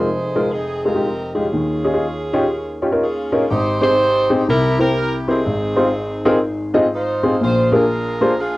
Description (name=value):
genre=gospel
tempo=122 BPM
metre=4/4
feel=swing 64% on 8ths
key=unclear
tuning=A4 = 440 Hz
part: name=warm saxophone section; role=melody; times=0.0-8.6 s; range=C4 to C5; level=-20 LUFS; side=right 1 dB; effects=none
part: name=warm baby grand piano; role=accompaniment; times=0.0-8.6 s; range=F1 to Eb5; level=-17 LUFS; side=left 1 dB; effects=cassette tape
room=moderate booth ambience, RT60 0.2 s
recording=home recording on cassette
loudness=-15 LUFS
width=side -18 dB against mid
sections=0.0-3.5 A section; 3.5-8.6 B section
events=none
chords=0.0 Fm9; 1.5 Eb9sus4; 3.5 Abmaj7; 4.5 C7; 5.5 Fm7/Ab; 7.4 Bb7